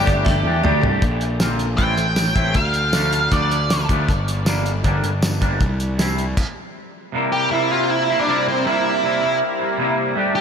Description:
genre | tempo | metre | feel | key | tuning
indie rock | 158 BPM | 4/4 | straight | unclear | A4 = 440 Hz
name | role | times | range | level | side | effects
octave-fuzz lead guitar | melody | 0.0-3.9, 7.3-10.4 s | C4 to G5 | -22 LUFS | right 2 dB | distortion, diffuse ambient delay
metallic FM bell | second line | 0.0-1.0 s | A4 to E5 | -29 LUFS | right 3 dB | chorus
chorused pulse-width pad | sustained chords | 0.0-1.0, 7.1-10.4 s | G4 to Bb5 | -30 LUFS | equal | none
twangy electric guitar | riff | 0.0-10.4 s | C3 to G4 | -22 LUFS | equal | double-tracked left and right
fuzz picked electric bass | bass | 0.0-6.3 s | G1 to E2 | -21 LUFS | equal | overdrive
cloth-damped thuddy drum kit | drums | 0.1-6.5 s | crash cymbal, hi-hat, kick drum, snare drum, tambourine, toms | -22 LUFS | equal | none
room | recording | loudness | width
moderate huge ambient reverb, RT60 4.6 s | dreamy mix soaked in reverb | -17 LUFS | side -7 dB against mid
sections
0.0-1.0 A section; 1.0-7.1 B section; 7.1-10.4 A section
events
drum fill 0.3-1.0; stop 6.4-7.1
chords
0.0 Gsus2; 1.0 Bbadd9; 1.8 Am; 2.5 Dm; 4.1 Gm; 5.6 C; 7.1 C7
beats
0.26 0.64 | 1.02 1.40 1.78 2.16 | 2.55 2.93 3.31 3.69 | 4.08 4.46 4.84 5.23 | 5.61 5.99 6.37 6.75 | 7.13 7.51 7.89 8.27 | 8.65 9.03 9.40 9.78 | 10.16

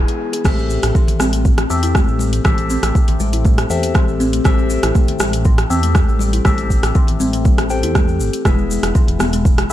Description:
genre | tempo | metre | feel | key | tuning
afro house | 120 BPM | 4/4 | straight | A minor | A4 = 440 Hz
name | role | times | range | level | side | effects
kalimba | arpeggios | 0.0-9.7 s | E3 to G#4 | -23 LUFS | left 1 dB | sidechain pumping, low-pass filter, digital delay
barky tine electric piano | stabs | 0.0-9.7 s | B3 to G#5 | -23 LUFS | left 4 dB | phaser, sidechain pumping, low-pass filter, digital delay
dark detuned saw bass | bass | 0.0-9.7 s | E1 to E2 | -20 LUFS | equal | sidechain pumping
noise sweep | sound effects | 0.0-0.5 s | none | -36 LUFS | left 3 dB | none
deep house drum kit | drums | 0.1-9.7 s | crash cymbal, hi-hat, rim click | -22 LUFS | right 1 dB | none
congas | percussion | 0.4-9.3 s | none | -27 LUFS | left 4 dB | none
electronic kick drum | drums | 0.5-9.6 s | none | -14 LUFS | equal | none
egg shaker | percussion | 0.5-9.7 s | none | -32 LUFS | left 4 dB | none
room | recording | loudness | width
little or no reverb | dark, warm production | -13 LUFS | side -13 dB against mid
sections
0.0-9.7 A section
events
noise sweep 0.0-0.5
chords
0.5 Am7; 8.5 E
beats
| 0.45 0.95 1.45 1.95 | 2.45 2.95 3.45 3.95 | 4.45 4.95 5.45 5.95 | 6.45 6.95 7.45 7.95 | 8.45 8.95 9.45

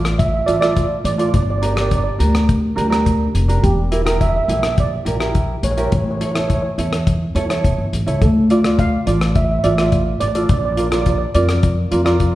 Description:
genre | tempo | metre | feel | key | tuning
calypso | 105 BPM | 4/4 | straight | D harmonic minor | A4 = 439 Hz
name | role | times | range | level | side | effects
steel pan | melody | 0.0-11.3 s | G4 to F5 | -23 LUFS | right 4 dB | none
tenor ukulele | accompaniment | 0.0-12.3 s | D4 to D5 | -21 LUFS | right 2 dB | none
upright bass | bass | 0.0-12.3 s | E1 to F2 | -18 LUFS | equal | none
cloth-damped thuddy drum kit | drums | 0.1-12.3 s | hi-hat, kick drum, rim click | -21 LUFS | left 1 dB | none
room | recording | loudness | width
wet recital hall reverb, RT60 1.4 s | heard from further back in the room | -15 LUFS | side -15 dB against mid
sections
0.0-12.3 A section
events
none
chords
0.0 Dmadd9; 1.3 Gm; 3.6 Edim; 5.9 A; 8.2 Dm; 10.5 Bb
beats
0.19 0.77 | 1.34 1.91 2.49 3.06 | 3.63 4.21 4.78 5.35 | 5.93 6.50 7.07 7.64 | 8.21 8.78 9.35 9.92 | 10.49 11.06 11.63 12.20

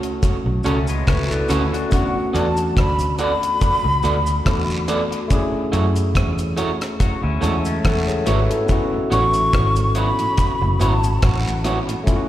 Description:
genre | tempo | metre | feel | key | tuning
lovers rock reggae | 71 BPM | 4/4 | swing 55% on 16ths | A major | A4 = 440 Hz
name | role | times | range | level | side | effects
barky tine electric piano | accompaniment | 0.0-12.3 s | G#3 to A5 | -24 LUFS | left 1 dB | tape echo, slapback echo
deep reggae drum kit | drums | 0.0-12.3 s | hi-hat, kick drum, rim click | -21 LUFS | equal | none
cabasa and guiro | percussion | 0.2-12.3 s | none | -37 LUFS | right 2 dB | tape echo, slapback echo
electric guitar through a small old amp | stabs | 0.5-11.9 s | A3 to D5 | -25 LUFS | right 3 dB | tape echo, slapback echo
vintage muted fingered electric bass | bass | 0.5-11.8 s | F#1 to F#2 | -20 LUFS | equal | none
electric guitar through a small old amp | arpeggios | 0.7-8.7 s | G#3 to F#4 | -30 LUFS | left 5 dB | slapback echo
breathy concert flute | melody | 1.9-11.9 s | F#5 to C#6 | -22 LUFS | left 1 dB | tape echo, slapback echo
mellow tonewheel organ | accompaniment | 8.9-12.0 s | A2 to C#4 | -31 LUFS | right 2 dB | none
room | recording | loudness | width
light reverb, small room ambience | live gig heard through the venue's PA, recital hall reverb | -17 LUFS | side -13 dB against mid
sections
0.0-12.3 A section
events
tine electric piano fill 7.0-8.7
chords
0.0 Dmaj7; 1.9 E9sus4; 5.3 F#m7; 8.7 A69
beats
0.23 1.07 | 1.92 2.77 3.61 4.46 | 5.30 6.15 7.00 7.84 | 8.69 9.53 10.38 11.22 | 12.07

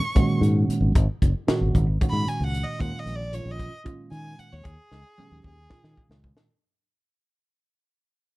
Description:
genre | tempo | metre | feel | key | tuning
electric jazz fusion | 227 BPM (eighths) | 7/8 | straight | unclear | A4 = 440 Hz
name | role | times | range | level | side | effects
clear violin | melody | 0.0-6.0 s | G#4 to C#6 | -34 LUFS | right 1 dB | slapback echo
tine electric piano | accompaniment | 0.1-6.5 s | A#2 to G4 | -27 LUFS | right 2 dB | phaser
crisp fusion drum kit | drums | 0.2-6.5 s | hi-hat, kick drum, snare drum, toms | -23 LUFS | equal | none
fingered electric bass | bass | 0.4-6.3 s | F#1 to D#3 | -24 LUFS | equal | none
room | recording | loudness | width
little or no reverb | none | -21 LUFS | side -20 dB against mid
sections
0.0-6.5 A section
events
fade-out 0.0-6.5; violin solo 0.0-6.5; drum fill 4.9-6.5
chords
0.0 G#9sus4; 2.8 D#9sus4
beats
0.14 0.41 0.68 | 0.94 1.21 1.47 1.74 2.00 2.27 2.53 | 2.80 3.06 3.33 3.59 3.85 4.12 4.38 | 4.65 4.91 5.18 5.44 5.71 5.97 6.24

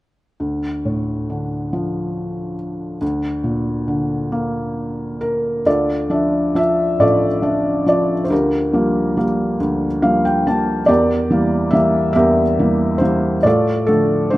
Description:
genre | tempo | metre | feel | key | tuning
classical, lyrical solo piano | 46 BPM (dotted quarters) | 6/8 | rubato | D minor | A4 = 440 Hz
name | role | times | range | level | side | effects
felt-muted upright piano | solo | 0.4-14.4 s | A1 to A5 | -16 LUFS | equal | none
room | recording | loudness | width
moderate recital hall reverb, RT60 1.7 s | close, detailed microphones | -15 LUFS | side -17 dB against mid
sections
0.4-5.7 A section; 5.7-14.4 B section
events
felt piano fill 9.6-10.9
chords
0.4 Dm; 3.0 Bb/D; 5.7 Dmadd9; 8.3 Gm7/D; 10.9 Edim; 13.4 Dm/A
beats
| 0.40 1.73 | 3.02 4.32 | 5.66 7.00 | 8.31 9.61 | 10.89 12.16 | 13.45

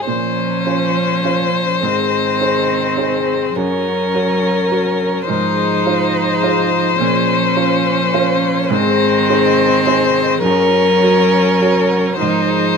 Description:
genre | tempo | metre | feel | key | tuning
neoclassical piano and strings | 104 BPM | 3/4 | rubato | Bb minor | A4 = 440 Hz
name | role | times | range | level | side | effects
warm violin | melody | 0.0-12.8 s | Bb4 to C5 | -16 LUFS | left 5 dB | none
clear baby grand piano | accompaniment | 0.0-12.8 s | Gb2 to Db5 | -20 LUFS | right 4 dB | none
rich cello | second line | 0.1-12.8 s | Eb3 to Gb3 | -21 LUFS | right 2 dB | none
warm viola | accompaniment | 0.1-12.8 s | C4 to Eb4 | -22 LUFS | right 4 dB | none
concert harp | arpeggios | 0.1-12.8 s | Db4 to Bb5 | -24 LUFS | left 10 dB | none
room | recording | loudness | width
light reverb | minimal, uncompressed stereo recording | -13 LUFS | side -5 dB against mid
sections
0.1-12.8 A section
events
none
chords
0.1 Bbmadd9; 1.8 Ab; 3.6 Gb; 5.3 Fm7/Ab; 7.0 Bbmadd9; 8.7 Ab; 10.4 Gb; 12.2 Fm7/Ab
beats
| 0.07 0.66 1.24 | 1.82 2.40 2.97 | 3.56 4.13 4.71 | 5.28 5.86 6.43 | 7.00 7.57 8.14 | 8.72 9.29 9.86 | 10.43 11.01 11.60 | 12.20

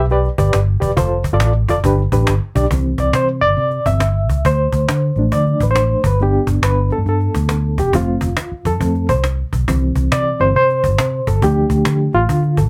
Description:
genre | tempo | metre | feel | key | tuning
uptempo 1960s-style soul | 138 BPM | 4/4 | swing 64% on 8ths | C major | A4 = 441 Hz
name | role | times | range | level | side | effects
bright reed electric piano | accompaniment | 0.0-12.7 s | E3 to E5 | -20 LUFS | equal | fast tremolo
vintage muted fingered electric bass | bass | 0.0-12.7 s | E1 to D3 | -19 LUFS | equal | none
cajon | drums | 0.1-12.6 s | none | -24 LUFS | equal | none
room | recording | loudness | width
moderate small room ambience, RT60 0.5 s | band playing live in one room | -16 LUFS | mono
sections
0.0-2.7 A section; 2.7-12.7 B section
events
reed electric piano solo 2.7-12.7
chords
0.0 G; 1.0 F; 1.8 G; 2.7 C; 4.5 Dm; 6.0 G; 7.9 F; 9.7 C; 11.4 Dm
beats
0.10 0.54 | 0.97 1.41 1.84 2.27 | 2.71 3.15 3.58 4.02 | 4.45 4.89 5.32 5.76 | 6.19 6.63 7.07 7.50 | 7.94 8.37 8.81 9.24 | 9.68 10.12 10.55 10.99 | 11.42 11.86 12.30

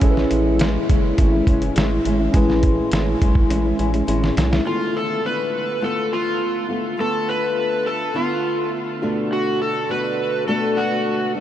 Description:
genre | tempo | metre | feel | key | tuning
indie pop, bedroom pop | 103 BPM | 4/4 | straight | A major | A4 = 441 Hz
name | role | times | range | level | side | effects
nylon-string guitar | accompaniment | 0.0-11.4 s | A2 to F#4 | -22 LUFS | left 2 dB | lush chorus, vibrato effect
tine electric piano | accompaniment | 0.0-4.7 s | C#4 to B4 | -26 LUFS | right 3 dB | none
round analog bass | bass | 0.0-4.6 s | F#1 to B1 | -22 LUFS | equal | none
lo-fi sampler-style drum kit | drums | 0.0-4.7 s | hi-hat, kick drum, snare drum | -21 LUFS | equal | vintage 12-bit sampler grit
overdriven slide guitar | melody | 4.7-11.3 s | F4 to B4 | -22 LUFS | equal | wide subtle chorus, tape echo
room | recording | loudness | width
moderate huge ambient reverb, RT60 7.1 s | dreamy mix soaked in reverb, cassette tape | -17 LUFS | side -11 dB against mid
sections
0.0-4.7 A section; 4.7-11.4 B section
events
drum fill 3.5-4.7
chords
0.0 Amaj7; 4.7 Dm6; 9.0 Bm7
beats
| 0.02 0.60 1.18 1.76 | 2.34 2.92 3.50 4.08 | 4.66 5.24 5.82 6.40 | 6.98 7.57 8.15 8.73 | 9.31 9.89 10.47 11.06

